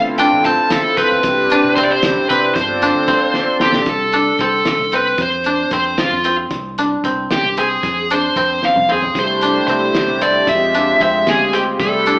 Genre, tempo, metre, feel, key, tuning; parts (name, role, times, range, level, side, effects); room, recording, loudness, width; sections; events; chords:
progressive instrumental, band music in an uneven meter; 227 BPM (eighths); 5/8; straight; C major; A4 = 439 Hz
brassy analog pad; accompaniment; 0.0-3.9, 9.2-12.2 s; Ab3 to A4; -19 LUFS; equal; chorus
koto; arpeggios; 0.0-12.2 s; B3 to D4; -19 LUFS; equal
mellow fretless electric bass; bass; 0.0-12.2 s; G1 to C3; -28 LUFS; equal
dark smooth lead guitar; melody; 0.2-12.2 s; F4 to A5; -15 LUFS; equal; overdrive
cloth-damped thuddy drum kit; drums; 0.2-12.2 s; hi-hat, kick drum, snare drum, toms; -23 LUFS; equal
wet large studio reverb, RT60 0.9 s; band playing live in one room, AM radio sound; -13 LUFS; side -25 dB against mid
0.0-3.9 A section; 3.9-12.2 B section
drum fill 3.4-3.9, 8.6-9.2
0.0 Dm7; 1.2 Cmaj7; 2.6 G7sus4; 3.9 Am/C; 5.2 F5; 6.5 Csus2; 7.8 F5; 9.2 C6; 10.5 Fmadd9